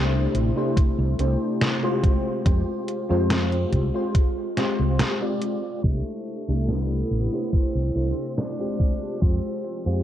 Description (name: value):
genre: vaporwave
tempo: 71 BPM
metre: 4/4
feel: straight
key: C major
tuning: A4 = 445 Hz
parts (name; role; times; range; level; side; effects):
- mellow FM electric piano; accompaniment; 0.0-10.0 s; Ab3 to D5; -27 LUFS; left 1 dB; ensemble chorus, cassette tape, tape echo
- warbly tape-like pad; sustained chords; 0.0-10.0 s; C3 to G4; -31 LUFS; equal; chorus, built-in reverb
- mellow fretless electric bass; bass; 0.0-10.0 s; A1 to F2; -23 LUFS; equal; none
- detuned 8-bit digital drum machine; drums; 0.3-9.8 s; hi-hat, snare drum; -28 LUFS; equal; low-pass filter on hats, low-pass filter on snare, low-pass filter on room
- electronic kick drum; drums; 0.8-9.4 s; none; -21 LUFS; equal; none
- growling tenor saxophone; melody; 5.8-9.8 s; A3 to D4; -36 LUFS; right 1 dB; tape echo
room: moderate plate reverb, RT60 2.3 s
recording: dreamy mix soaked in reverb, cassette tape, low-pass filter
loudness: -21 LUFS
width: side -11 dB against mid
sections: 0.0-5.8 A section; 5.8-10.0 B section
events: break 5.0-5.8; filter sweep on drum 5.8-10.0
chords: 0.0 C6; 2.0 Fmadd9; 5.8 C6; 8.8 Fmadd9